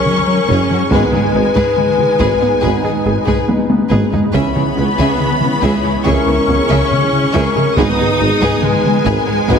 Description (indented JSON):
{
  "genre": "cinematic, hybrid orchestral and electronic film score",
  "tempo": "70 BPM",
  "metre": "4/4",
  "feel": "straight",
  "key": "C# dorian",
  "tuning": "A4 = 439 Hz",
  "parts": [
    { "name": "warm symphonic violin section", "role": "melody", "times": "0.0-9.6 s", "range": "G#5 to D#6", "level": "-21 LUFS", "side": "left 4 dB", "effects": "none" },
    { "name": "rich chamber violin section", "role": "second line", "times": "0.0-9.6 s", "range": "B3 to E5", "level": "-23 LUFS", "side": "left 3 dB", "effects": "none" },
    { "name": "clear symphonic viola section", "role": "accompaniment", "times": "0.0-9.6 s", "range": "G#3 to D#4", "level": "-21 LUFS", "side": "equal", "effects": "none" },
    { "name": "mellow French horn section", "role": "sustained chords", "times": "0.0-9.6 s", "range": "G#4 to B4", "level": "-19 LUFS", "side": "left 3 dB", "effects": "none" },
    { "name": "warm analog pad", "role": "sustained chords", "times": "0.0-9.6 s", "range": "G#3 to C#5", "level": "-23 LUFS", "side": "right 1 dB", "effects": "chorus" },
    { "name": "smooth gliding synth bass", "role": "riff", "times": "0.1-9.6 s", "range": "C#2 to G#3", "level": "-21 LUFS", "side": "left 3 dB", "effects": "none" },
    { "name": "taiko ensemble", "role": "drums", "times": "0.1-9.6 s", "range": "none", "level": "-20 LUFS", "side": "equal", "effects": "none" },
    { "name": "analog pluck", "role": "arpeggios", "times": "0.5-9.6 s", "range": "C#3 to G#4", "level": "-25 LUFS", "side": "right 2 dB", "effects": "none" },
    { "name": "mellow tuba", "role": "bass", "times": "0.5-9.6 s", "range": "F#1 to C#2", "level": "-23 LUFS", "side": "right 4 dB", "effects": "none" },
    { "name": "rich symphonic cello section", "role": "bass", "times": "0.5-9.6 s", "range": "F#2 to C#3", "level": "-22 LUFS", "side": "right 3 dB", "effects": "none" },
    { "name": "rich symphonic double bass section", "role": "bass", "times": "0.5-9.6 s", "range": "F#1 to C#2", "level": "-23 LUFS", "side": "right 3 dB", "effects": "none" },
    { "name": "mellow trombone section", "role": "sustained chords", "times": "0.9-9.6 s", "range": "D#3 to C#4", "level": "-25 LUFS", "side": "right 4 dB", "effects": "none" }
  ],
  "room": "wet scoring stage reverb, RT60 2.1 s",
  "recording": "heavily compressed radio sound",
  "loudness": "-12 LUFS",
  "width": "side -6 dB against mid",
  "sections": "0.0-9.6 A section",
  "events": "drum fill 3.5-4.3",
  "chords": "0.0 F#add9; 0.9 G#m; 4.3 C#m7; 7.8 G#m",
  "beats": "0.06 | 0.92 1.78 2.63 3.49 | 4.35 5.21 6.06 6.92 | 7.78 8.63 9.49"
}